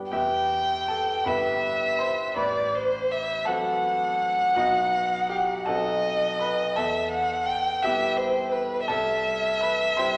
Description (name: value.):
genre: classical, romantic duo for violin and grand piano.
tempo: 55 BPM (dotted quarters).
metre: 6/8.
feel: rubato.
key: E minor.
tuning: A4 = 437 Hz.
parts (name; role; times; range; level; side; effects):
bright grand piano; accompaniment; 0.0-10.2 s; G1 to C6; -31 LUFS; equal; none.
warm violin; melody; 0.1-10.2 s; B4 to G5; -26 LUFS; equal; none.
room: wet recital hall reverb, RT60 1.6 s.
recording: nothing above 10.7 kHz.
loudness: -25 LUFS.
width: mono.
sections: 0.1-10.2 A section.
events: none.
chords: 0.1 Em; 1.3 Em/G; 2.4 F#dim/A; 4.6 B; 5.7 B7b9; 6.8 Em; 8.9 C.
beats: | 0.12 1.26 | 2.37 3.46 | 4.56 5.66 | 6.76 7.83 | 8.89 9.97.